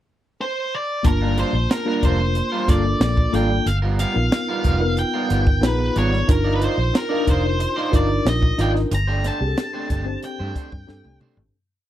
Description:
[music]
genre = polished 1980s jazz-funk pop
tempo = 92 BPM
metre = 4/4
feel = straight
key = G minor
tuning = A4 = 440 Hz
[part]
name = octave-fuzz lead guitar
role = melody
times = 0.4-11.2 s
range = Bb4 to Bb5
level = -25 LUFS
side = equal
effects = distortion
[part]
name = mellow tine electric piano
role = accompaniment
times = 1.0-11.6 s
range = Bb3 to A#5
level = -24 LUFS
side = left 2 dB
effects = medium stereo tremolo, analog chorus
[part]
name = electric guitar at the edge of break-up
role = riff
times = 1.0-11.4 s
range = G3 to D5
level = -28 LUFS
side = right 6 dB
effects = lush chorus
[part]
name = vintage muted fingered electric bass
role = bass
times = 1.0-11.5 s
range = F1 to G2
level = -22 LUFS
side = equal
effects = none
[part]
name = crisp fusion drum kit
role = drums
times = 1.0-11.5 s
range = hi-hat, kick drum, snare drum, toms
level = -20 LUFS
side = equal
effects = none
[sound]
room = little or no reverb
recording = dry, close 1970s-style studio recording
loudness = -18 LUFS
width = side -12 dB against mid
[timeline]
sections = 0.0-1.1 pickup bar; 1.1-11.5 verse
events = fade-out 8.9-11.5; drum fill 10.9-11.5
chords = 0.0 N.C.; 1.1 Gm7; 3.7 G7alt; 6.3 Cm11; 8.9 D7sus4/G

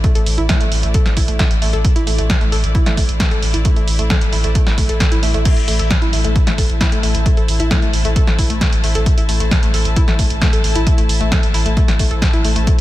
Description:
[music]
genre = driving peak-time techno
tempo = 133 BPM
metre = 4/4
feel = straight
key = A minor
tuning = A4 = 438 Hz
[part]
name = analog pluck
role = riff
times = 0.0-12.7 s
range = A3 to A4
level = -23 LUFS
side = left 1 dB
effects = chorus, tube saturation, sidechain pumping, diffuse ambient delay
[part]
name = saturated sub bass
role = bass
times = 0.0-12.8 s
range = A1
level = -19 LUFS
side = equal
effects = overdrive, sidechain pumping, low-pass filter
[part]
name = electronic kick drum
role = drums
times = 0.0-12.8 s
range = none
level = -15 LUFS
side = equal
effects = none
[part]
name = punchy analog drum machine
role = drums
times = 0.0-12.8 s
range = crash cymbal, hi-hat, snare drum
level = -21 LUFS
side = right 1 dB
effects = none
[part]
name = dark studio string section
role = texture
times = 0.0-12.8 s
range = E4 to A5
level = -28 LUFS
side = left 2 dB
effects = sidechain pumping
[sound]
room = light reverb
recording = none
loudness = -13 LUFS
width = side -15 dB against mid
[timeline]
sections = 0.0-12.8 A section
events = fade-in on string section 0.0-12.8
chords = 0.0 Am

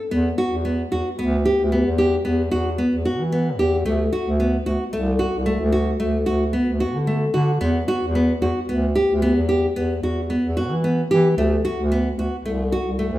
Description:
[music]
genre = contemporary instrumental, chamber music in an uneven meter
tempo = 112 BPM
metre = 7/4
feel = straight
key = unclear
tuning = A4 = 440 Hz
[part]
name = nylon-string guitar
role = arpeggios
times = 0.1-13.2 s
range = A3 to G4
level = -21 LUFS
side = equal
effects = none
[part]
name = mellow bass clarinet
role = bass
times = 0.1-13.2 s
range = C2 to E3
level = -22 LUFS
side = equal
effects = none
[sound]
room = wet recital hall reverb, RT60 1.3 s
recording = minimal, uncompressed stereo recording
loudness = -18 LUFS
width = side -15 dB against mid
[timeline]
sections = 0.1-13.2 A section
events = none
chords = 0.1 Emadd9; 3.9 D; 7.6 Emadd9; 11.4 D

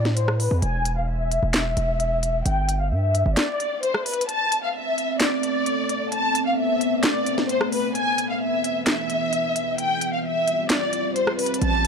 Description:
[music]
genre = hip hop, trap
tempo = 131 BPM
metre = 4/4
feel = half-time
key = A minor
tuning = A4 = 440 Hz
[part]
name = warm studio violin section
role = melody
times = 0.0-11.9 s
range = B4 to A5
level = -24 LUFS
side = left 2 dB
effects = low-pass filter
[part]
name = distorted 808-style bass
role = bass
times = 0.0-3.4, 11.6-11.9 s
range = E1 to A2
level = -22 LUFS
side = equal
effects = distortion
[part]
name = trap drum kit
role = drums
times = 0.1-11.9 s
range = handclaps, hi-hat, rim click, snare drum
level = -25 LUFS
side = equal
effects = none
[part]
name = deep dark ambient pad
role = sustained chords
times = 4.8-11.9 s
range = E3 to G#4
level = -26 LUFS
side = right 1 dB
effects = chorus, built-in reverb, phaser
[sound]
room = light reverb, digital ambience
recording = dark, warm production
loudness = -20 LUFS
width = side -6 dB against mid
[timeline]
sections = 0.0-11.9 A section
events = filter sweep on violin section 0.0-4.3; kick muted 3.4-4.3, 4.3-11.6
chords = 0.0 Am; 0.6 N.C.; 2.5 G5; 4.3 Amadd9; 8.0 E; 9.8 G7sus4

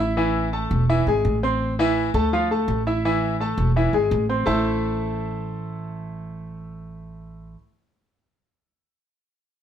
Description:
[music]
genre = latin, salsa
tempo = 168 BPM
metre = 4/4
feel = straight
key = A harmonic minor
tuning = A4 = 441 Hz
[part]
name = clear concert grand piano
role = accompaniment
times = 0.0-7.5 s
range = E3 to E6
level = -22 LUFS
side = left 1 dB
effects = none
[part]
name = upright bass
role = bass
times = 0.0-7.5 s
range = E1 to D2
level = -24 LUFS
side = right 1 dB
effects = none
[sound]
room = light reverb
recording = none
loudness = -20 LUFS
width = side -9 dB against mid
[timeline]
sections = 0.0-4.5 A section; 4.5-7.3 B section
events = none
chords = 0.2 A5; 0.9 E; 1.6 Am; 2.3 Dm; 3.0 A5; 3.8 E; 4.5 Am

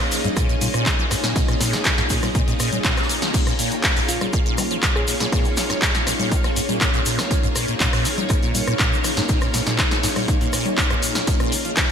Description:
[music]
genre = acid house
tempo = 121 BPM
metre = 4/4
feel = straight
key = Bb minor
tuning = A4 = 440 Hz
[part]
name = string machine, full ensemble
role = sustained chords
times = 0.0-11.9 s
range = Bb3 to F5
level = -28 LUFS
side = equal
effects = ensemble chorus, sidechain pumping
[part]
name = liquid acid bass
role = riff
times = 0.0-11.8 s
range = Ab2 to Bb3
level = -26 LUFS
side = equal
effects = phaser, wide subtle chorus
[part]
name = punchy analog drum machine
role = drums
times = 0.0-11.9 s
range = congas, crash cymbal, handclaps, hi-hat, ride cymbal, rim click, snare drum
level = -23 LUFS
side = left 1 dB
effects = gated reverb
[part]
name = granular cloud pad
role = texture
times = 0.0-11.9 s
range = Bb3 to Ab5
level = -28 LUFS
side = left 1 dB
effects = built-in reverb, sidechain pumping
[part]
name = crunchy breakbeat drum kit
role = drums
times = 0.1-11.9 s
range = hi-hat, snare drum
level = -36 LUFS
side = equal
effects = none
[part]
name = tube shaker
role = percussion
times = 0.1-11.9 s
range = none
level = -31 LUFS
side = left 2 dB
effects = none
[part]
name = electronic kick drum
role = drums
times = 0.4-11.9 s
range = none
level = -22 LUFS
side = equal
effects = none
[part]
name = bell-like FM electric piano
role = melody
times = 4.1-5.5 s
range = F4 to Ab4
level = -32 LUFS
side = equal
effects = chorus, digital delay
[sound]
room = moderate lush hall reverb, RT60 1.8 s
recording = bright 1980s-style digital production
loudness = -18 LUFS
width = side -7 dB against mid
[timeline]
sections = 0.0-11.9 A section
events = none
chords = 0.0 Bbm

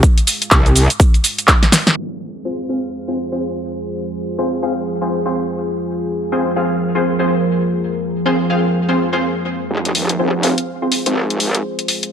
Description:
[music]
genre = bass house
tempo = 124 BPM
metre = 4/4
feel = swing 60% on 16ths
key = F minor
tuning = A4 = 439 Hz
[part]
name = deep dark ambient pad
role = sustained chords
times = 0.3-12.1 s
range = F3 to F5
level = -22 LUFS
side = right 1 dB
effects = chorus, built-in reverb, vintage 12-bit sampler grit, sidechain pumping
[part]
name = electronic kick drum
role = drums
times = 0.0-1.6 s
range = none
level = -12 LUFS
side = equal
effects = overdrive
[part]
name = house drum kit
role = drums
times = 0.0-1.9, 9.9-12.1 s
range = cabasa, handclaps, hi-hat, snare drum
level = -15 LUFS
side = equal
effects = high-pass filter on perc, low-pass filter on perc, high-pass filter on hats, low-pass filter on hats, high-pass filter on snare, low-pass filter on snare
[part]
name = metallic wobble bass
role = bass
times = 0.5-0.9, 9.7-11.6 s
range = Eb1 to C2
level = -16 LUFS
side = equal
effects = distortion, chorus, overdrive, sidechain pumping, high-pass filter
[part]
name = orchestra-hit-like synth stab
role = stabs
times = 2.4-11.2 s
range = C4 to F5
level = -20 LUFS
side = left 1 dB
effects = built-in reverb, sidechain pumping, tape echo
[sound]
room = moderate lush hall reverb, RT60 2.0 s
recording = low-pass filter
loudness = -15 LUFS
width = side -8 dB against mid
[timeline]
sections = 0.0-2.0 A section; 2.0-9.7 B section; 9.7-12.1 C section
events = drop 0.0-2.0; drum fill 1.6-2.0; band accent 1.8; filter sweep 2.0-9.7, 9.7-12.1; build-up 9.7-12.1; filter sweep on synth stab 9.7-12.1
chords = 0.0 Fm

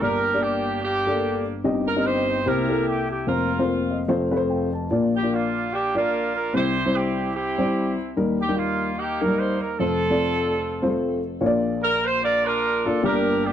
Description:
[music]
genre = gospel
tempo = 147 BPM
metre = 4/4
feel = swing 57% on 8ths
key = Bb major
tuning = A4 = 440 Hz
[part]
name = mellow horn section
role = melody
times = 0.0-13.5 s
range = Bb3 to D5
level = -24 LUFS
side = right 2 dB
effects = none
[part]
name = dark upright piano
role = accompaniment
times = 0.0-13.5 s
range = F1 to A5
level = -22 LUFS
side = left 2 dB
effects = none
[sound]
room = small room ambience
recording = dry, close 1970s-style studio recording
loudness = -20 LUFS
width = side -10 dB against mid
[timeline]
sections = 0.0-11.4 A section; 11.4-13.5 B section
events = upright piano fill 3.7-4.9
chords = 0.0 Gm; 1.6 Cm/G; 2.5 C7; 3.3 Fsus4; 4.1 F; 4.9 Bb; 6.5 C; 8.2 Eb; 9.8 F; 11.4 Bb

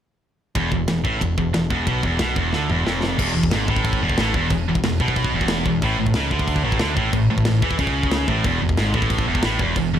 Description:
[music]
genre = heavy metal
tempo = 182 BPM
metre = 4/4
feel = straight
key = unclear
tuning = A4 = 440 Hz
[part]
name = scooped high-gain guitar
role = riff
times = 0.6-10.0 s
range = E2 to E3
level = -20 LUFS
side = equal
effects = distortion
[part]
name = growling picked electric bass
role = bass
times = 0.6-10.0 s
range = E1 to E2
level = -25 LUFS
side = equal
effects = overdrive
[part]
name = tight metal drum kit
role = drums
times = 0.6-9.8 s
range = crash cymbal, kick drum, ride cymbal, snare drum, toms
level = -24 LUFS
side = equal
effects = none
[sound]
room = little or no reverb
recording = none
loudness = -18 LUFS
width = side -10 dB against mid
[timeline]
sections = 0.6-3.2 A section; 3.2-10.0 B section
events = drum fill 2.5-3.2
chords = 0.6 E5; 3.2 E; 5.8 A5; 8.5 E

